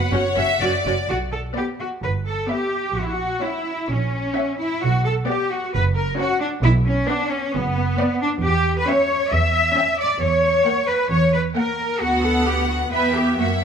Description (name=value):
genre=quick classical-period movement for string orchestra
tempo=132 BPM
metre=4/4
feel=rubato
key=B minor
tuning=A4 = 440 Hz
part: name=rich symphonic violin section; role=melody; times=0.0-13.6 s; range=F#5 to B5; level=-34 LUFS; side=left 3 dB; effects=none
part: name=clear studio violin section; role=second line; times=0.0-13.6 s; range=B4 to F#5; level=-25 LUFS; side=left 3 dB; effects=none
part: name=clear symphonic viola section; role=accompaniment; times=0.1-13.6 s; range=A#3 to F#4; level=-26 LUFS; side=equal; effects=none
part: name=clear studio double bass section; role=bass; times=0.1-13.6 s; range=F#1 to F#2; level=-22 LUFS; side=right 2 dB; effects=none
part: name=rich studio cello section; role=bass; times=0.1-13.6 s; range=F#2 to E5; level=-21 LUFS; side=equal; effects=none
room=light reverb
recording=none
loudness=-18 LUFS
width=side -7 dB against mid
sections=0.0-1.1 A section; 1.1-13.6 B section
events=none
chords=0.1 F#5; 1.1 Bm; 2.0 Em/G; 3.0 F#7/A#; 4.8 Bm; 5.7 F#; 6.6 Bm; 8.4 C#dim/E; 10.2 F#7/E; 12.0 Bm/D; 12.9 Em